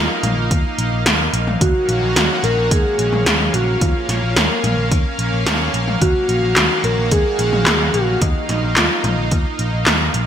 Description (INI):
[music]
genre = synthwave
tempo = 109 BPM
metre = 4/4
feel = straight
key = Eb minor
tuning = A4 = 439 Hz
[part]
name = soft octave-layered synth lead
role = melody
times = 0.0-9.3 s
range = Eb4 to Bb4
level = -22 LUFS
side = equal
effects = chorus, ping-pong delay
[part]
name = soft synth bell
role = second line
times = 0.0-9.3 s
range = Eb4 to Bb4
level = -27 LUFS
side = right 1 dB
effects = none
[part]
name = lush unison pad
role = sustained chords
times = 0.0-10.3 s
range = Eb3 to F5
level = -22 LUFS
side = equal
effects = chorus, sidechain pumping
[part]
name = picked electric bass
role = bass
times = 0.0-10.3 s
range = Bb1 to Eb2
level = -20 LUFS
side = equal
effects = none
[part]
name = 80s electronic pad drums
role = drums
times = 0.2-10.3 s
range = handclaps, hi-hat, snare drum, toms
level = -18 LUFS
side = equal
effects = gated reverb on snare and toms, gated reverb
[part]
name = electronic kick drum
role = drums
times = 0.5-9.4 s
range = none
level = -18 LUFS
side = equal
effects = overdrive
[sound]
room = moderate lush hall reverb, RT60 2.5 s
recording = bright 1980s-style digital production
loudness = -14 LUFS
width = side -9 dB against mid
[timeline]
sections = 0.0-10.3 A section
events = none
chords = 0.0 Bbsus4; 1.6 Ebm7; 3.8 Bbm; 6.0 Ebm7; 8.2 Bbsus4